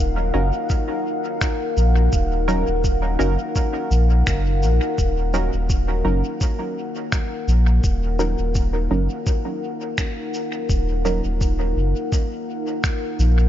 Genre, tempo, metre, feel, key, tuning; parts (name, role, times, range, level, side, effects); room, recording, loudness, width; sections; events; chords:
ambient dub; 84 BPM; 4/4; swing 55% on 16ths; Eb minor; A4 = 440 Hz
deep dark ambient pad; sustained chords; 0.0-13.5 s; Eb4 to Gb5; -26 LUFS; left 2 dB; chorus, built-in reverb
warm sub bass; bass; 0.0-13.5 s; Eb1 to Bb1; -19 LUFS; equal
filtered dub chord stab; stabs; 0.3-11.2 s; Gb3 to Bb4; -28 LUFS; right 2 dB; chorus, dub echo
electronic cabasa and finger snaps; drums; 0.7-13.4 s; -31 LUFS; equal; studio ambience, dub echo
electronic kick drum; drums; 0.7-13.0 s; -22 LUFS; equal; studio ambience
digital ambience; nothing above 7.5 kHz; -19 LUFS; side -12 dB against mid
0.0-13.5 A section
0.0 Ebm